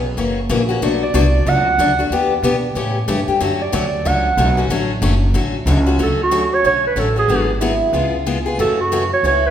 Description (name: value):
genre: acoustic string swing (jazz manouche)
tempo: 186 BPM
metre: 4/4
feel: swing 61% on 8ths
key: D major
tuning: A4 = 440 Hz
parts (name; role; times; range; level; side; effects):
- upright bass; bass; 0.0-9.5 s; F#1 to B2; -19 LUFS; equal; none
- picked steel-string acoustic guitar; accompaniment; 0.2-9.4 s; B2 to G#4; -19 LUFS; left 4 dB; none
- mellow clarinet; melody; 1.0-9.5 s; F#4 to F#5; -17 LUFS; right 3 dB; none
- picked steel-string acoustic guitar; second line; 6.0-9.5 s; C#4 to F#4; -24 LUFS; right 2 dB; none
room: wet recital hall reverb, RT60 1.5 s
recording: recorded in a church or concert hall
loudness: -14 LUFS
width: side -9 dB against mid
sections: 0.0-6.0 A section; 6.0-9.5 B section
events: clarinet solo 0.0-6.0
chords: 0.2 F#7; 0.8 Bm7; 2.1 Em7; 2.8 A7; 3.4 Dmaj7; 7.3 G#m7b5; 7.9 C#7; 8.6 F#m7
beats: 0.18 0.50 | 0.82 1.15 1.47 1.79 | 2.12 2.44 2.76 3.09 | 3.41 3.73 4.05 4.38 | 4.70 5.03 5.35 5.67 | 6.00 6.32 6.64 6.97 | 7.29 7.61 7.94 8.26 | 8.59 8.91 9.23